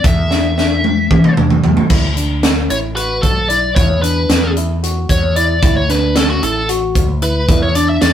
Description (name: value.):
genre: progressive instrumental, band music in an uneven meter.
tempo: 226 BPM (eighths).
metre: 7/8.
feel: straight.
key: unclear.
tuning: A4 = 440 Hz.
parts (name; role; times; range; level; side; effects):
biting lead guitar; melody; 0.0-8.1 s; F#4 to E5; -17 LUFS; left 1 dB; overdrive.
mellow fretless electric bass; bass; 0.0-8.1 s; A1 to E2; -18 LUFS; equal; none.
crisp fusion drum kit; drums; 0.0-8.1 s; crash cymbal, hi-hat, kick drum, snare drum, toms; -14 LUFS; right 1 dB; none.
tine electric piano; arpeggios; 0.3-8.1 s; B3 to F#4; -21 LUFS; left 2 dB; overdrive, phaser.
room: moderate studio reverb, RT60 0.5 s.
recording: rough rehearsal-room recording.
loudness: -12 LUFS.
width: side -10 dB against mid.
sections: 0.0-1.9 A section; 1.9-8.1 B section.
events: drum fill 0.3-1.9; lead electric guitar solo 1.9-8.1.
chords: 0.0 E5; 1.9 D; 3.8 E5; 5.6 D; 7.5 Bmadd11 (rootless).